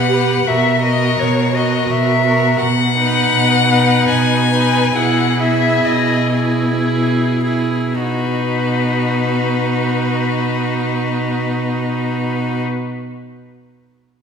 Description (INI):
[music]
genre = classical, slow romantic movement for string quartet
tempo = 49-86 BPM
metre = 3/4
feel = rubato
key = B major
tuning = A4 = 441 Hz
[part]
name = rich violin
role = melody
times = 0.0-12.6 s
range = B4 to G#5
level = -18 LUFS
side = left 5 dB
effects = none
[part]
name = clear violin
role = second line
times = 0.0-12.6 s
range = F#4 to B4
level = -23 LUFS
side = left 2 dB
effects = none
[part]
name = clear viola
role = accompaniment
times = 0.0-12.6 s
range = D#4 to G4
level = -22 LUFS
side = right 2 dB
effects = none
[part]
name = rich cello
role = bass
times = 0.0-12.6 s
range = B2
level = -18 LUFS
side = right 2 dB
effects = none
[sound]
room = wet scoring stage reverb, RT60 1.9 s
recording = recorded in a church or concert hall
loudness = -14 LUFS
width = side -6 dB against mid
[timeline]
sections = 0.0-8.0 A section; 8.0-14.2 B section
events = slowing down 1.5-8.0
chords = 0.5 F#7/B; 2.6 B; 4.9 E/B; 8.0 B